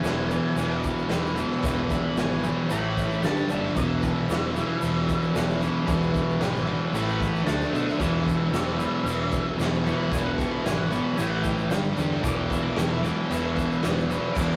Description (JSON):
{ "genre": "garage rock duo or trio", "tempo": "113 BPM", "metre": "4/4", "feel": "straight", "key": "unclear", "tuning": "A4 = 440 Hz", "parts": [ { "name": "octave-fuzz lead guitar", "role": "melody", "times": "0.0-14.6 s", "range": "E5 to D6", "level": "-38 LUFS", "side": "equal", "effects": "distortion" }, { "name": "fuzz guitar", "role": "riff", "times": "0.0-14.6 s", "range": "E2 to D4", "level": "-27 LUFS", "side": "equal", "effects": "distortion" }, { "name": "picked electric bass", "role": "bass", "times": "0.0-14.6 s", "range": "E1 to B2", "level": "-35 LUFS", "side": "equal", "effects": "none" }, { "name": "tube shaker", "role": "percussion", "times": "0.0-14.6 s", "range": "none", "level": "-51 LUFS", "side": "equal", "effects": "none" }, { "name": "raw garage drum kit", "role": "drums", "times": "0.1-14.5 s", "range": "crash cymbal, kick drum, snare drum", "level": "-32 LUFS", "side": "equal", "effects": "none" } ], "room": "moderate studio reverb, RT60 0.6 s", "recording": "rough rehearsal-room recording, tube saturation", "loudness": "-25 LUFS", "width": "mono", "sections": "0.0-14.6 A section", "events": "none", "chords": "0.0 E; 2.7 A5; 3.2 G5; 3.8 E5; 6.9 A5; 7.5 D5; 8.0 E5; 11.2 A5; 11.7 G5; 12.2 E5" }